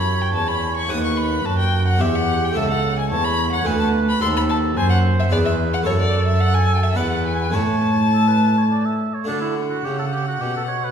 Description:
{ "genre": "classical, baroque-style sonata movement with continuo", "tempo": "108 BPM", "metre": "3/4", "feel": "straight", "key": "A major", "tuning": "A4 = 439 Hz", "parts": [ { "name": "rich violin", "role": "melody", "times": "0.0-10.9 s", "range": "C#5 to D#6", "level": "-24 LUFS", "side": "left 4 dB", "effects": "none" }, { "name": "warm oboe", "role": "second line", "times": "0.0-10.9 s", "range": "D4 to E5", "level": "-25 LUFS", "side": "right 4 dB", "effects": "none" }, { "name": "harpsichord", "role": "accompaniment", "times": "0.0-10.9 s", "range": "C#2 to D5", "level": "-26 LUFS", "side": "left 1 dB", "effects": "none" }, { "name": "warm cello", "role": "bass", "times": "0.0-10.9 s", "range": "C#2 to D3", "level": "-20 LUFS", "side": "right 1 dB", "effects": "none" } ], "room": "wet recital hall reverb, RT60 1.6 s", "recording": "heard from further back in the room", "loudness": "-17 LUFS", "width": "side -8 dB against mid", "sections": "0.0-9.3 A section; 9.3-10.9 A section", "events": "none", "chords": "0.0 Em; 0.9 B7/D#; 2.0 Em; 2.6 A/C#; 3.7 D; 4.2 D#dim7; 5.3 E; 5.9 F#m; 7.0 E7; 7.6 A; 9.3 D" }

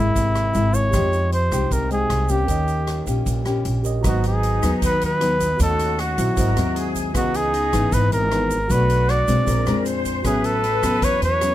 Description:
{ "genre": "bossa nova", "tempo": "154 BPM", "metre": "4/4", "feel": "straight", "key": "G# minor from 4.0 s", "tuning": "A4 = 440 Hz", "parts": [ { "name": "warm flugelhorn", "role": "melody", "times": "0.0-11.5 s", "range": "E4 to D5", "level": "-22 LUFS", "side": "equal", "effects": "none" }, { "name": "nylon-string guitar", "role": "accompaniment", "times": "0.0-11.5 s", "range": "G#2 to G4", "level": "-25 LUFS", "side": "left 3 dB", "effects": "none" }, { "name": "tine electric piano", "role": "accompaniment", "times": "0.0-11.5 s", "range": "B3 to C#6", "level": "-32 LUFS", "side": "right 5 dB", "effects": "overdrive" }, { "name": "upright bass", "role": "bass", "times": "0.0-11.5 s", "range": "G#1 to F2", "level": "-22 LUFS", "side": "equal", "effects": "none" }, { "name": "swinging big-band drum kit", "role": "drums", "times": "0.2-11.5 s", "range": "hi-hat, kick drum, rim click", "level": "-28 LUFS", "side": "equal", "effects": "none" }, { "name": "egg shaker", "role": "percussion", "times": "0.2-11.5 s", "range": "none", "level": "-37 LUFS", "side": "right 9 dB", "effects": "none" }, { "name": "breathy bright large flute ensemble", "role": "second line", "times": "4.1-11.5 s", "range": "D#4 to B#4", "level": "-29 LUFS", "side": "left 2 dB", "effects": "none" } ], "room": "light reverb", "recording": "close, detailed microphones", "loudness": "-18 LUFS", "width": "side -13 dB against mid", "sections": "0.0-4.0 A section; 4.0-11.5 B section", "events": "none", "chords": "0.0 C7alt; 0.9 Fm9; 2.5 Eb7; 4.0 G#m7; 5.6 D#m7b5; 6.4 G#7b13; 7.2 C#m9; 8.7 Bm7; 9.5 A#9; 10.3 A69" }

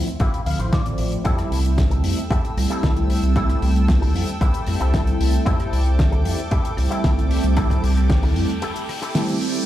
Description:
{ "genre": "nu-disco, nu disco", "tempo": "114 BPM", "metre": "4/4", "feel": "straight", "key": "unclear", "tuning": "A4 = 440 Hz", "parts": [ { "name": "mellow synth brass", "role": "accompaniment", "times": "0.0-9.6 s", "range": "F3 to E4", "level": "-25 LUFS", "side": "right 2 dB", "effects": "chorus, phaser, sidechain pumping, dub echo" }, { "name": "damped 70s drum kit", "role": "drums", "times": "0.1-9.6 s", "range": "hi-hat, rim click, snare drum", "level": "-28 LUFS", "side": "left 1 dB", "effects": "none" }, { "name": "electric guitar with an envelope filter", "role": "riff", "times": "0.2-9.4 s", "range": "E4 to F5", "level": "-30 LUFS", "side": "left 3 dB", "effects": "ensemble chorus, dub echo" }, { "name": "fingered electric bass with an envelope filter", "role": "bass", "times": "0.2-8.4 s", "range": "A1 to F2", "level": "-21 LUFS", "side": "equal", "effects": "none" }, { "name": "electronic kick drum", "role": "drums", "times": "0.2-8.2 s", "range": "none", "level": "-22 LUFS", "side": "equal", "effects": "none" }, { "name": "lush unison pad", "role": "sustained chords", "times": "1.2-9.6 s", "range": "A4 to E6", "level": "-32 LUFS", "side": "equal", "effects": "chorus, sidechain pumping" }, { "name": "riser", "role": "sound effects", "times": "7.3-9.7 s", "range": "none", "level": "-34 LUFS", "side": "right 1 dB", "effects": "none" } ], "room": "little or no reverb", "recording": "played on a big sound system in a bare room, stone room reverb", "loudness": "-18 LUFS", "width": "side -13 dB against mid", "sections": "0.0-9.7 A section", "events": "clean electric guitar fill 0.2-1.3; riser 7.3-9.7; break 8.6-9.7", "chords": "0.0 Dm9; 1.3 Fmaj9 (rootless)" }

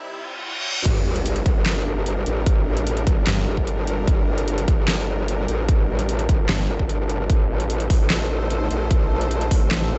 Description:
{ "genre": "heavy wobble dubstep", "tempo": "149 BPM", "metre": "4/4", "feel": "half-time", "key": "G minor", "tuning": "A4 = 440 Hz", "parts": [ { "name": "supersaw pad", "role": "sustained chords", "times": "0.0-10.0 s", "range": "C3 to C5", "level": "-34 LUFS", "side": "equal", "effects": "sidechain pumping" }, { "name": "riser, reverse cymbal and sub drop", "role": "sound effects", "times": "0.0-2.5 s", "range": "none", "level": "-30 LUFS", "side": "equal", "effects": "none" }, { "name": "growl bass", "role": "bass", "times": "0.9-10.0 s", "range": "G1 to Bb1", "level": "-26 LUFS", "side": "equal", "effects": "chorus, overdrive" }, { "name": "dubstep drum kit", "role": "drums", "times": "0.9-9.9 s", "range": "crash cymbal, handclaps, hi-hat, snare drum", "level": "-28 LUFS", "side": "equal", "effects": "overdrive" }, { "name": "electronic kick drum", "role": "drums", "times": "0.9-9.6 s", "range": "none", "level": "-22 LUFS", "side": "equal", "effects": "overdrive" }, { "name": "warbly tape-like pad", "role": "texture", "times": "2.9-10.0 s", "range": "A4 to E6", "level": "-40 LUFS", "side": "equal", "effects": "chorus, built-in reverb, sidechain pumping" }, { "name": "snarling distorted saw bass", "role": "bass", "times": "3.3-3.5, 6.5-6.7, 9.7-9.9 s", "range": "G1 to A1", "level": "-24 LUFS", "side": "equal", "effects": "distortion, overdrive" } ], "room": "little or no reverb", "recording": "high-pass filter, nothing above 8.0 kHz", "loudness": "-21 LUFS", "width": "mono", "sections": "0.9-10.0 A section", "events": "break 0.0-0.9; riser 0.0-0.9; reverse cymbal 0.0-0.9; drop 0.9-10.0; impact 0.9-2.5", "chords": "0.0 C; 0.9 Gm; 7.3 Adim" }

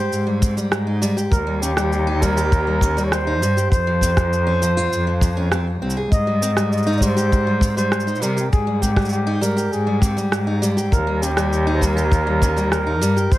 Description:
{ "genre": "folktronica", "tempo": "100 BPM", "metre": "4/4", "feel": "straight", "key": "Ab major", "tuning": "A4 = 440 Hz", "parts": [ { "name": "breathy flugelhorn", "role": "melody", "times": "0.0-13.4 s", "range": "G4 to Eb5", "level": "-24 LUFS", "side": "right 1 dB", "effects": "digital delay" }, { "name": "picked steel-string acoustic guitar", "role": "arpeggios", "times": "0.0-13.3 s", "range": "F3 to Ab4", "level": "-25 LUFS", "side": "left 1 dB", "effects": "digital delay" }, { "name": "rich cello", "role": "bass", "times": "0.0-13.4 s", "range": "C2 to C3", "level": "-20 LUFS", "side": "equal", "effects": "none" }, { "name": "electronic shaker and rim click", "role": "drums", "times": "0.1-13.4 s", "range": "none", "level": "-26 LUFS", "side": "right 1 dB", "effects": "none" }, { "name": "kick drum", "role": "drums", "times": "0.4-13.4 s", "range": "none", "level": "-17 LUFS", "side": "equal", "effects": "none" } ], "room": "small room ambience", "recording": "none", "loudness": "-17 LUFS", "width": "side -16 dB against mid", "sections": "0.0-13.4 A section", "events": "none", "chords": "0.0 Abmaj7; 1.3 Eb; 3.7 Dbmaj7/F (rootless); 6.1 Abmaj7; 10.9 Eb" }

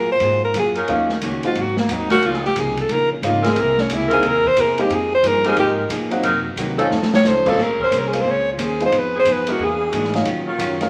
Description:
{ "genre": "jazz, big band swing", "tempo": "179 BPM", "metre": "4/4", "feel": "swing 64% on 8ths", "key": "F minor, Bb minor from 7.6 s", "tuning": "A4 = 440 Hz", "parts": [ { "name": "clear alto saxophone", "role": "melody", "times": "0.0-10.2 s", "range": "Bb3 to Db5", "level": "-21 LUFS", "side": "equal", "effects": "none" }, { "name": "hollow-body jazz guitar", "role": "accompaniment", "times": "0.0-10.8 s", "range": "Ab2 to C5", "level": "-28 LUFS", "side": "equal", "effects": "none" }, { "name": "upright bass", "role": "bass", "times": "0.0-10.9 s", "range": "Ab1 to Bb2", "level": "-32 LUFS", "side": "equal", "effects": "none" }, { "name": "open jazz drum kit", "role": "drums", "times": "0.2-10.9 s", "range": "crash cymbal, hi-hat, kick drum, ride cymbal, snare drum", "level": "-28 LUFS", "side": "equal", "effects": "none" }, { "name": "mellow saxophone section", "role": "sustained chords", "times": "0.8-10.9 s", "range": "Eb3 to Bb4", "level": "-25 LUFS", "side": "equal", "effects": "none" }, { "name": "dark baby grand piano", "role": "accompaniment", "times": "0.9-10.9 s", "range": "Gb3 to Bb4", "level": "-25 LUFS", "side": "equal", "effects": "none" } ], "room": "wet large studio reverb, RT60 1.0 s", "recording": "vinyl crackle", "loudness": "-19 LUFS", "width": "mono", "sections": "0.0-7.6 A section; 7.6-10.9 A section", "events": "alto saxophone solo 0.0-10.9; drum fill 6.9-7.2", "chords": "0.0 Gbmaj9; 0.9 Ebm7; 1.6 Ab9; 2.2 Db69; 3.6 C7alt; 4.9 Fm11; 6.2 Cm7b5; 6.9 F7b13; 7.6 Bbm9; 8.9 Fm7b5; 9.6 E7#11; 10.3 Ebm9" }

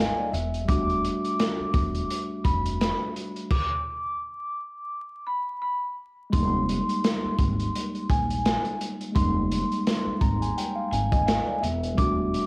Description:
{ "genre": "hip hop, boom-bap hip-hop", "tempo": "85 BPM", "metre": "4/4", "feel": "swing 57% on 16ths", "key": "F dorian", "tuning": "A4 = 438 Hz", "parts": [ { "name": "vibraphone with hard mallets", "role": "melody", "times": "0.0-12.5 s", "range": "Ab5 to D6", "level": "-29 LUFS", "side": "equal", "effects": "high-pass filter, low-pass filter, cassette tape" }, { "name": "mellow tine electric piano", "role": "accompaniment", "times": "0.0-12.5 s", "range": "G3 to Bb5", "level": "-29 LUFS", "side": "equal", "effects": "medium stereo tremolo, high-pass filter, low-pass filter" }, { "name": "upright bass", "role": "bass", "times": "0.0-12.4 s", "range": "E1 to Bb1", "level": "-29 LUFS", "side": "equal", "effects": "none" }, { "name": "crunchy breakbeat drum kit", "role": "drums", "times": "0.3-12.5 s", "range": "crash cymbal, hi-hat, kick drum, snare drum", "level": "-27 LUFS", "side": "equal", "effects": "cassette tape" } ], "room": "small room ambience", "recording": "home recording on cassette, vinyl crackle", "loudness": "-24 LUFS", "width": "side -29 dB against mid", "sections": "0.0-6.3 A section; 6.3-12.5 A section", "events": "stop 3.5-6.3", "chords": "0.3 Em11; 6.3 Fm11; 11.6 Em11" }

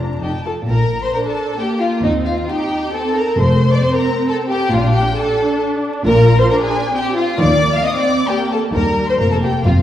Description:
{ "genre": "cinematic, playful, whimsical film cue", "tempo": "134 BPM", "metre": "3/4", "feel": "straight", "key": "Bb major", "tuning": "A4 = 435 Hz", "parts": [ { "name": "warm studio violin section", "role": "melody", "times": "0.0-9.8 s", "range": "Eb5 to F6", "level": "-24 LUFS", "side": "left 3 dB", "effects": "none" }, { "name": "warm studio violin section", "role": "second line", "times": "0.0-9.7 s", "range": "D4 to F5", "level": "-18 LUFS", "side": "left 1 dB", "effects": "none" }, { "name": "dark studio viola section", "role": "accompaniment", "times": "0.0-9.8 s", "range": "G3 to F4", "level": "-21 LUFS", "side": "right 1 dB", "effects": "none" }, { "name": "rich studio double bass section", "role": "bass", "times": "0.0-9.8 s", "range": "F1 to Eb2", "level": "-19 LUFS", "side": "equal", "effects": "none" }, { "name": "warm studio cello section", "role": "bass", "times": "0.0-9.8 s", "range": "Eb2 to Eb3", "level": "-20 LUFS", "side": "equal", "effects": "none" } ], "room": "wet scoring stage reverb, RT60 1.7 s", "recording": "heard from further back in the room, vinyl crackle", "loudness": "-14 LUFS", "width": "side -11 dB against mid", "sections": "0.7-9.8 A section", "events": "none", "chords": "0.2 F; 0.7 Bb; 2.0 Cm/Eb; 3.4 F; 4.7 Bb; 7.4 Eb5; 9.2 Bb5/F" }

